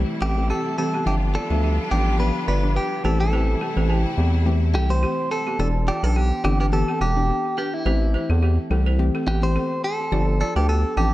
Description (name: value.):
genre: afrobeats.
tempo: 106 BPM.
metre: 4/4.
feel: swing 55% on 16ths.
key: A minor.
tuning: A4 = 436 Hz.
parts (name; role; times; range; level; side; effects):
soft round pluck; accompaniment; 0.0-11.1 s; E3 to G4; -27 LUFS; left 2 dB; chorus, tape echo.
bright studio string section; sustained chords; 0.0-5.6 s; C3 to F4; -32 LUFS; equal; none.
round analog bass; bass; 0.0-11.1 s; E1 to E2; -20 LUFS; equal; none.
direct-recorded clean electric guitar; melody; 0.2-11.1 s; E4 to C5; -26 LUFS; equal; spring reverb, tape echo.
balafon; riff; 0.2-11.1 s; B3 to E5; -30 LUFS; right 3 dB; tape echo.
room: studio ambience.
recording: echo-heavy mix.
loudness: -19 LUFS.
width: side -16 dB against mid.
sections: 0.0-5.6 A section; 5.6-11.1 B section.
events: none.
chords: 0.0 Am7; 1.1 G7; 3.0 Am7; 5.6 Em7; 7.9 Am7; 10.1 G7.